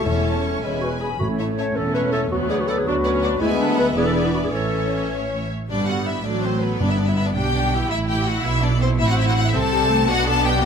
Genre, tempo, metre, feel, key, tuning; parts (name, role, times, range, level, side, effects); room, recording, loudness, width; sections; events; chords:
quick classical-period movement for symphony orchestra; 109 BPM (dotted quarters); 6/8; rubato; A major, G major from 5.7 s; A4 = 439 Hz
rich studio violin section; melody; 0.0-10.6 s; B4 to A5; -26 LUFS; left 3 dB
dark clarinet; second line; 0.0-5.1 s; D4 to C#5; -24 LUFS; left 1 dB
flute section; second line; 0.0-5.5 s; B4 to G#5; -31 LUFS; left 2 dB
rich studio violin section; second line; 0.0-10.7 s; B3 to C#6; -27 LUFS; left 2 dB
rich studio viola section; accompaniment; 0.0-10.7 s; F#3 to E4; -26 LUFS; equal
warm bassoon; accompaniment; 0.0-5.5 s; E3 to A3; -29 LUFS; equal
warm French horn section; sustained chords; 0.0-5.5 s; E3 to D4; -28 LUFS; left 6 dB
rich studio double bass section; bass; 0.1-10.7 s; E1 to D2; -26 LUFS; right 2 dB
warm studio cello section; bass; 0.1-10.7 s; D2 to C#3; -26 LUFS; right 2 dB
timpani; percussion; 0.1-1.7, 6.8-7.3 s; E2 to A2; -28 LUFS; left 1 dB
moderate recital hall reverb, RT60 1.6 s; close, detailed microphones; -18 LUFS; side -7 dB against mid
0.0-5.7 A section; 5.7-10.7 B section
0.1 A/E; 0.6 E; 1.2 A; 2.3 Bm/D; 3.4 E7/D; 4.0 E5; 4.5 A; 5.7 G; 6.3 Am69; 6.8 G; 7.9 A5; 8.4 E5/B; 9.0 Am; 10.1 Bm